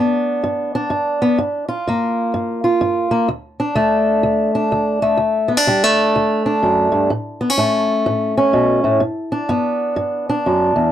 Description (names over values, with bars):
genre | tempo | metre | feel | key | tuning
blues | 126 BPM | 4/4 | swing 63% on 8ths | unclear | A4 = 439 Hz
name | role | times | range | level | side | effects
fingerpicked swing-style acoustic guitar | solo | 0.0-10.9 s | D2 to F4 | -15 LUFS | equal | none
room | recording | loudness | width
little or no reverb | dry, close 1970s-style studio recording | -15 LUFS | side -11 dB against mid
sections
0.0-10.9 A section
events
none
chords
0.0 G; 1.4 Gm7; 3.3 D5; 7.1 A; 9.0 G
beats
0.45 0.92 | 1.40 1.87 2.35 2.82 | 3.30 3.77 4.25 4.72 | 5.20 5.68 6.15 6.63 | 7.11 7.58 8.06 8.54 | 9.02 9.49 9.97 10.45